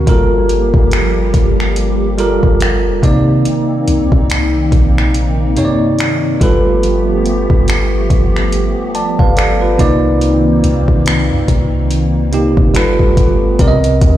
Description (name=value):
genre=contemporary R&B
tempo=71 BPM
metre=4/4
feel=swing 58% on 16ths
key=C dorian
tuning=A4 = 444 Hz
part: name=bell-like tine electric piano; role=accompaniment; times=0.0-14.2 s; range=C3 to A5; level=-15 LUFS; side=right 1 dB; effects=fast stereo tremolo
part: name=hollow soft pad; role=sustained chords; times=0.0-13.6 s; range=Eb3 to G4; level=-19 LUFS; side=left 1 dB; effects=ensemble chorus
part: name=warm 808-style bass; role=bass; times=0.0-14.2 s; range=F1 to C3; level=-15 LUFS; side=equal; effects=none
part: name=smooth R&B drum kit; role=drums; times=0.1-14.2 s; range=finger snaps, hi-hat, kick drum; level=-14 LUFS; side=equal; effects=vintage 12-bit sampler grit
room=light reverb, digital ambience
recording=played on a big sound system in a bare room, large studio reverb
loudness=-10 LUFS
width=side -12 dB against mid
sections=0.0-13.6 A section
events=none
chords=0.1 Gm9; 3.0 Cm9; 6.4 G9; 9.8 Cm9; 12.7 G9; 13.6 Cm7